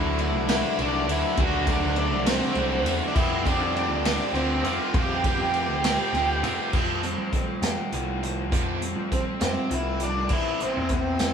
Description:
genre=indie rock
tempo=67 BPM (dotted quarters)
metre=6/8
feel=straight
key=unclear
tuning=A4 = 440 Hz
part: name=octave-fuzz lead guitar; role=melody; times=0.0-6.4, 9.1-11.3 s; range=C4 to G4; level=-28 LUFS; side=equal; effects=distortion, digital delay
part: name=combo organ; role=sustained chords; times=0.0-6.7 s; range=G4 to D6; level=-39 LUFS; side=right 2 dB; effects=none
part: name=overdriven electric guitar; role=riff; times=0.0-10.3 s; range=D3 to G4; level=-30 LUFS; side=right 6 dB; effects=none
part: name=raw garage guitar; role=riff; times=0.0-11.3 s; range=E3 to G4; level=-30 LUFS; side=left 4 dB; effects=overdrive
part: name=fuzz picked electric bass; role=bass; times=0.0-11.3 s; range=A1 to F3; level=-30 LUFS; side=equal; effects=overdrive
part: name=vintage drum kit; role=drums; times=0.2-11.3 s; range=crash cymbal, hi-hat, kick drum, ride cymbal, snare drum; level=-27 LUFS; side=equal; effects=none
room=moderate studio reverb, RT60 0.8 s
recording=band playing live in one room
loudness=-22 LUFS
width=side -7 dB against mid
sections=0.0-6.7 A section; 6.7-10.3 B section; 10.3-11.3 C section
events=none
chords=0.0 D; 3.2 Fsus2; 10.3 Am

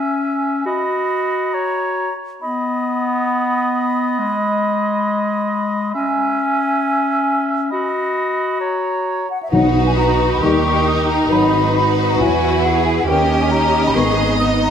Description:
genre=cinematic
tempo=136 BPM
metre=4/4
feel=straight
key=B major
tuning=A4 = 442 Hz
part: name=bright clarinet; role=second line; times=0.0-9.3 s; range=G#3 to F#4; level=-20 LUFS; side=left 2 dB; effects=none
part: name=mellow silver concert flute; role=second line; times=0.0-14.7 s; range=E5 to D#6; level=-21 LUFS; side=equal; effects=none
part: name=warm oboe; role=second line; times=0.0-9.3 s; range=C#5 to E5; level=-23 LUFS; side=right 3 dB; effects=none
part: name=rich chamber violin section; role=melody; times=9.5-14.7 s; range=A#4 to D#5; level=-22 LUFS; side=left 3 dB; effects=none
part: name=warm symphonic violin section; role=second line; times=9.5-14.7 s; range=D#4 to G4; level=-24 LUFS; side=left 4 dB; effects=none
part: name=rich symphonic viola section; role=accompaniment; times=9.5-14.7 s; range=B3 to E4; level=-22 LUFS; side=right 1 dB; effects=none
part: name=warm French horn section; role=sustained chords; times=9.5-14.1 s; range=D#3 to E4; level=-21 LUFS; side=left 4 dB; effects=none
part: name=clear studio cello section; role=bass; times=9.5-14.7 s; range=D#4 to G#4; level=-21 LUFS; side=right 3 dB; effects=none
part: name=rich symphonic double bass section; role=bass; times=9.5-14.7 s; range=G#1 to E2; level=-21 LUFS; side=right 3 dB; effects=none
part: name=timpani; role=percussion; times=9.5-10.2 s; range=B2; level=-22 LUFS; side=equal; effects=none
room=moderate scoring stage reverb, RT60 1.6 s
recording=none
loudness=-15 LUFS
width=side -8 dB against mid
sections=0.0-9.5 A section; 9.5-14.7 B section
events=build-up 0.0-9.5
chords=0.0 C#m; 0.7 B/F#; 1.5 F#; 2.4 B; 4.2 G#m; 5.9 C#m; 7.7 B/F#; 8.6 F#; 9.5 B; 10.4 D#7; 11.3 G#m7; 12.2 Esus2; 13.1 D#7; 14.0 G#m

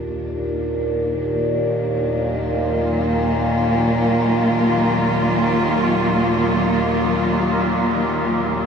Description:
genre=ambient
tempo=free time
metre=none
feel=none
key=Eb harmonic minor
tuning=A4 = 440 Hz
part: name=warm symphonic cello section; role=sustained chords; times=0.0-8.7 s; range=Eb3 to F4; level=-20 LUFS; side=equal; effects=none
part: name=overtone-sweeping drone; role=drone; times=0.0-8.7 s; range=Eb2 to Bb2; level=-20 LUFS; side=equal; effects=chorus, built-in reverb
part: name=tubular bells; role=arpeggios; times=2.9-8.7 s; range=Eb4 to Bb4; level=-33 LUFS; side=right 3 dB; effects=none
room=wet huge ambient reverb, RT60 7.6 s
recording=none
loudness=-17 LUFS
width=side -6 dB against mid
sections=0.0-8.7 A section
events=none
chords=0.0 Ebm

